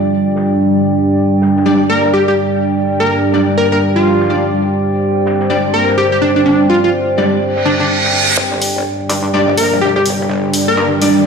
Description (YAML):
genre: bass house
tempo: 125 BPM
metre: 4/4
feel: swing 60% on 16ths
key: G minor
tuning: A4 = 440 Hz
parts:
  - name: dark analog pad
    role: sustained chords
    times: 0.0-11.3 s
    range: G3 to D5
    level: -15 LUFS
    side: right 1 dB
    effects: chorus, phaser
  - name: warbly tape-like pad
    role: texture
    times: 0.0-11.3 s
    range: G4 to G5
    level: -20 LUFS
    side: right 1 dB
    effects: chorus, built-in reverb
  - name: unplugged drum kit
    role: drums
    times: 0.2-8.4 s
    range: hi-hat, shaker, snare drum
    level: -31 LUFS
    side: right 1 dB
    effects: high-pass filter on hats, low-pass filter on hats, studio reverb, high-pass filter on snare, low-pass filter on snare, high-pass filter on perc, low-pass filter on perc, high-pass filter on room, low-pass filter on room
  - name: orchestra-hit-like synth stab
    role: stabs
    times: 1.7-11.2 s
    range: G3 to D5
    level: -18 LUFS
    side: equal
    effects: built-in reverb, tape echo
  - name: plucky unison lead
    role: melody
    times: 1.9-10.9 s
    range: D4 to Bb4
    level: -15 LUFS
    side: left 1 dB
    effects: tape echo
  - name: reverse cymbal and riser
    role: sound effects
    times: 7.6-11.3 s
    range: none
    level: -18 LUFS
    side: right 2 dB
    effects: none
  - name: metallic wobble bass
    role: bass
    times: 8.4-11.0 s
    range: G1 to G2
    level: -20 LUFS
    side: left 1 dB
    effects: chorus, overdrive, high-pass filter
  - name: electronic hi-hat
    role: drums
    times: 8.6-11.1 s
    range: none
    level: -20 LUFS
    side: left 1 dB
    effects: low-pass filter on cymbals, studio reverb, low-pass filter on hats
room: moderate lush hall reverb, RT60 2.1 s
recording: played on a big sound system in a bare room, stone room reverb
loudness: -11 LUFS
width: side -6 dB against mid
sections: 0.0-8.4 A section; 8.4-11.3 B section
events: reverse cymbal 7.6-8.4; build-up 8.4-11.3; riser 8.4-11.3; filter sweep 8.4-11.3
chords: 0.0 G5